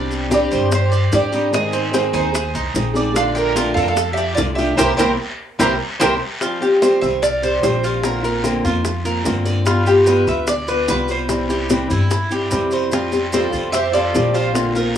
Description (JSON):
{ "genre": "latin, Cuban son and guajira", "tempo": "148 BPM", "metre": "4/4", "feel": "straight", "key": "unclear", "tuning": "A4 = 441 Hz", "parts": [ { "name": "fingerpicked steel-string acoustic guitar", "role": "accompaniment", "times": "0.0-15.0 s", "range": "C3 to Ab4", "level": "-21 LUFS", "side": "left 2 dB", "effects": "cassette tape, plate reverb" }, { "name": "Cuban tres", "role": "arpeggios", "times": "0.0-15.0 s", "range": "C4 to F5", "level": "-24 LUFS", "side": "right 3 dB", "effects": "cassette tape, plate reverb" }, { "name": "upright bass", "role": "bass", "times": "0.0-15.0 s", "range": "Bb1 to Ab2", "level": "-23 LUFS", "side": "equal", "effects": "none" }, { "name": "bongos", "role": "percussion", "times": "0.1-15.0 s", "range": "none", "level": "-23 LUFS", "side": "left 4 dB", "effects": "none" }, { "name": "maracas", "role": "percussion", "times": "0.1-15.0 s", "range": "none", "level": "-30 LUFS", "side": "right 4 dB", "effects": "none" }, { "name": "Cuban tres", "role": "melody", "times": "0.3-15.0 s", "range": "G4 to Ab5", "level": "-20 LUFS", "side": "right 1 dB", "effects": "cassette tape, plate reverb" }, { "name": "warm studio violin section", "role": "second line", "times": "0.3-6.1, 13.3-15.0 s", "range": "F4 to C5", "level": "-24 LUFS", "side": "right 2 dB", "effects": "cassette tape, plate reverb" }, { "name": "guiro", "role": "percussion", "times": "0.3-15.0 s", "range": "none", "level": "-32 LUFS", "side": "left 2 dB", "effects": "none" } ], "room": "wet booth ambience, RT60 0.2 s", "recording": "home recording on cassette, small room ambience", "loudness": "-15 LUFS", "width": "side -9 dB against mid", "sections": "0.0-6.4 A section; 6.4-15.0 B section", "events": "band accent 4.8-6.4; drum fill 6.2", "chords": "0.0 Csus2; 1.5 Ab; 3.2 Bbmaj7; 4.8 C7; 6.4 Fsus2; 8.0 Bbadd9; 9.7 G7; 11.3 C; 12.9 Fadd9", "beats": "0.31 0.72 1.13 | 1.53 1.94 2.35 2.75 | 3.16 3.56 3.97 4.38 | 4.78 5.19 5.60 6.00 | 6.41 6.82 7.22 7.63 | 8.04 8.44 8.85 9.26 | 9.66 10.07 10.48 10.88 | 11.29 11.70 12.11 12.51 | 12.92 13.33 13.73 14.14 | 14.55 14.96" }